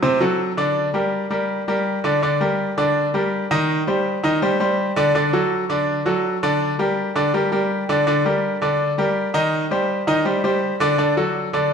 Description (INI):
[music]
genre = latin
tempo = 164 BPM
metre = 4/4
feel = straight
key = G harmonic minor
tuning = A4 = 440 Hz
[part]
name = bright baby grand piano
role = solo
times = 0.0-11.7 s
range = C3 to Eb5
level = -18 LUFS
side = equal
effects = none
[sound]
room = wet recital hall reverb, RT60 1.8 s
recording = minimal, uncompressed stereo recording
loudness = -18 LUFS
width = side -6 dB against mid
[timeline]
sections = 0.0-2.2 A section; 2.2-11.7 B section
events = none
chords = 0.0 D7; 0.8 Gm; 3.7 Cm; 5.1 D; 6.6 Gm; 9.5 Cm; 11.0 D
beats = 0.02 0.39 | 0.76 1.12 1.49 1.86 | 2.22 2.59 2.96 3.32 | 3.69 4.05 4.42 4.78 | 5.15 5.51 5.88 6.24 | 6.61 6.97 7.33 7.70 | 8.06 8.43 8.79 9.16 | 9.52 9.89 10.25 10.62 | 10.98 11.35 11.71